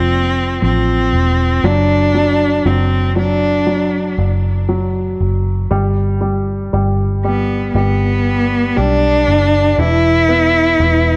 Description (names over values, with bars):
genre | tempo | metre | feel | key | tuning
pop ballad | 59 BPM | 4/4 | straight | G major | A4 = 440 Hz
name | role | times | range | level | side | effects
clear cello | melody | 0.0-11.2 s | B3 to E4 | -17 LUFS | equal | none
warm baby grand piano | accompaniment | 0.0-11.2 s | E3 to B3 | -22 LUFS | equal | none
vintage muted fingered electric bass | bass | 0.0-11.2 s | E1 to B1 | -19 LUFS | equal | none
room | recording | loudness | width
light reverb, small room reverb | worn, warbling old tape, cassette tape, warbly pitch drift | -15 LUFS | mono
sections
0.0-11.2 A section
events
none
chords
0.0 F; 1.6 D/F#; 5.7 G; 9.8 E5